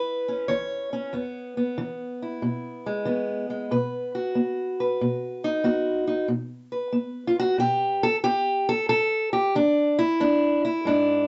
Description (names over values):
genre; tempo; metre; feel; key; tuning
acoustic country blues, solo or duo; 93 BPM; 4/4; swing 67% on 8ths; unclear; A4 = 440 Hz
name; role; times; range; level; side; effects
fingerpicked steel-string acoustic guitar; solo; 0.0-11.3 s; E2 to C#5; -25 LUFS; equal; none
room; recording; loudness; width
moderate studio reverb, RT60 0.5 s; nothing above 7.9 kHz; -25 LUFS; mono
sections
0.0-11.3 A section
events
none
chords
0.0 A (rootless); 1.1 E; 3.7 B; 8.9 A5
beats
0.49 | 1.13 1.78 2.42 3.07 | 3.71 4.36 5.01 5.65 | 6.30 6.95 7.59 8.24 | 8.89 9.54 10.18 10.83